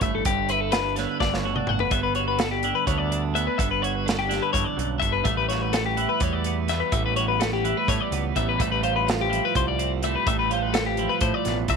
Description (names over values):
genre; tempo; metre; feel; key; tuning
math rock and midwest emo; 252 BPM (eighths); 7/8; straight; G major; A4 = 440 Hz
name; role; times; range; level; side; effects
twelve-string electric guitar; accompaniment; 0.0-11.8 s; D2 to F#4; -27 LUFS; right 16 dB; none
twelve-string electric guitar; arpeggios; 0.0-11.8 s; G4 to F#5; -25 LUFS; left 14 dB; none
growling picked electric bass; bass; 0.0-11.8 s; G1 to A2; -29 LUFS; right 1 dB; overdrive
modern studio drum kit; drums; 0.0-11.8 s; hi-hat, kick drum, snare drum, toms; -28 LUFS; right 1 dB; none
room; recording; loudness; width
light reverb; 1960s-style stereo with parts hard left and right, faint mains hum; -21 LUFS; side -5 dB against mid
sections
0.0-1.9 A section; 1.9-11.8 B section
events
drum fill 1.2-1.9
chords
0.2 Gmaj7; 5.3 A9; 8.6 Fmaj9/A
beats
0.01 | 0.25 0.48 0.72 0.96 1.20 1.44 1.67 | 1.91 2.15 2.39 2.63 2.87 3.10 3.34 | 3.58 3.82 4.06 4.30 4.54 4.78 5.01 | 5.25 5.49 5.73 5.97 6.21 6.45 6.68 | 6.92 7.16 7.40 7.64 7.88 8.12 8.35 | 8.59 8.83 9.07 9.31 9.54 9.78 10.02 | 10.26 10.50 10.73 10.97 11.21 11.45 11.69